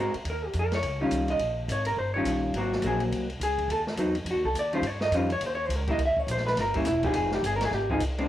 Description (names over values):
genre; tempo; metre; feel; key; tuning
jazz, small-group swing and bop; 209 BPM; 4/4; swing 61% on 8ths; Eb mixolydian; A4 = 440 Hz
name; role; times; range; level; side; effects
vintage hollow-body jazz guitar; accompaniment; 0.0-8.3 s; Eb3 to E5; -26 LUFS; equal; cassette tape
upright bass; bass; 0.0-8.3 s; E1 to Ab2; -32 LUFS; equal; none
open jazz drum kit; drums; 0.1-8.2 s; hi-hat, kick drum, ride cymbal, snare drum; -35 LUFS; equal; cassette tape
room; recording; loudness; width
moderate spring reverb, RT60 1.8 s, small room ambience; home recording on cassette; -25 LUFS; side -12 dB against mid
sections
0.0-8.3 A section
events
none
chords
0.2 Eb9; 2.5 Ab9; 3.7 Cdim7; 4.8 Eb9; 6.0 C7; 7.1 Fm7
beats
| 0.24 0.53 0.82 1.10 | 1.39 1.68 1.97 2.25 | 2.54 2.83 3.11 3.40 | 3.69 3.98 4.26 4.55 | 4.84 5.12 5.41 5.70 | 5.99 6.28 6.56 6.85 | 7.14 7.42 7.71 8.00